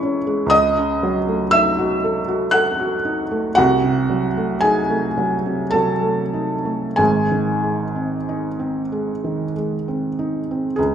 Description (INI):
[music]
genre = classical, romantic nocturne for solo piano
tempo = 45-60 BPM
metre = 3/4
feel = rubato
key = unclear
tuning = A4 = 444 Hz
[part]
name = felt-muted upright piano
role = solo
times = 0.0-10.9 s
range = G#1 to F#6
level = -17 LUFS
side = right 1 dB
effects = none
[sound]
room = moderate recital hall reverb, RT60 1.7 s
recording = minimal, uncompressed stereo recording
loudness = -17 LUFS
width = side -8 dB against mid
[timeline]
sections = 0.0-10.8 A section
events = none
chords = 0.0 C#m; 0.5 D#m7b5/C#; 3.6 Cdim7; 7.0 G#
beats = | 0.52 1.53 2.54 | 3.58 4.65 5.75 | 7.00 8.30 9.56 | 10.78